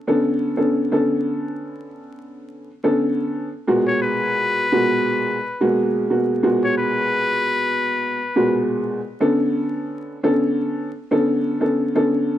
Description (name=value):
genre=hip hop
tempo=87 BPM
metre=4/4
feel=swing 56% on 16ths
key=unclear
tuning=A4 = 439 Hz
part: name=dark upright piano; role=accompaniment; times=0.1-12.4 s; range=A#2 to A4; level=-19 LUFS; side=equal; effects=high-pass filter, low-pass filter
part: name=trumpet with metal mute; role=melody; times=3.9-8.7 s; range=B4 to C#5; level=-21 LUFS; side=left 3 dB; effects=high-pass filter, low-pass filter, analog delay
room=light reverb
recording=dark, warm production, vinyl crackle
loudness=-18 LUFS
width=side -12 dB against mid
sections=0.0-3.7 A section; 3.7-12.4 B section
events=none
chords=0.0 Bm9; 3.7 G#m9; 9.2 Bm9